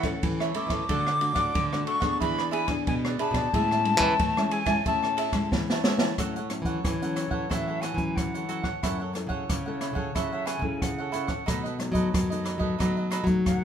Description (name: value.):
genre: samba and choro.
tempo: 91 BPM.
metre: 4/4.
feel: straight.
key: A major.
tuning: A4 = 440 Hz.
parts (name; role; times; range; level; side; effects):
silver concert flute; melody; 0.0-13.6 s; C#5 to D6; -29 LUFS; left 3 dB; none.
cavaquinho; accompaniment; 0.0-13.3 s; D4 to A5; -33 LUFS; right 6 dB; none.
nylon-string guitar; accompaniment; 0.0-13.6 s; F#2 to A4; -33 LUFS; left 2 dB; none.
nylon-string guitar; bass; 0.0-13.6 s; F#2 to A3; -30 LUFS; left 1 dB; none.
open jazz drum kit; drums; 0.0-13.6 s; hi-hat, kick drum, ride cymbal, rim click, snare drum; -30 LUFS; right 1 dB; none.
room: moderate large studio reverb, RT60 0.9 s.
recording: minimal, uncompressed stereo recording.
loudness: -24 LUFS.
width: side -8 dB against mid.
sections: 0.0-6.2 A section; 6.2-13.6 B section.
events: drum fill 5.5-6.2; flute solo 6.2-13.6.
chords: 0.0 A/E; 0.9 D; 2.2 E7; 3.5 Amaj7; 6.2 A6; 8.8 F#m7; 11.5 B7.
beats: 0.23 | 0.89 1.55 2.21 2.87 | 3.54 4.20 4.86 5.52 | 6.18 6.84 7.51 8.17 | 8.83 9.49 10.16 10.82 | 11.48 12.14 12.81 13.47.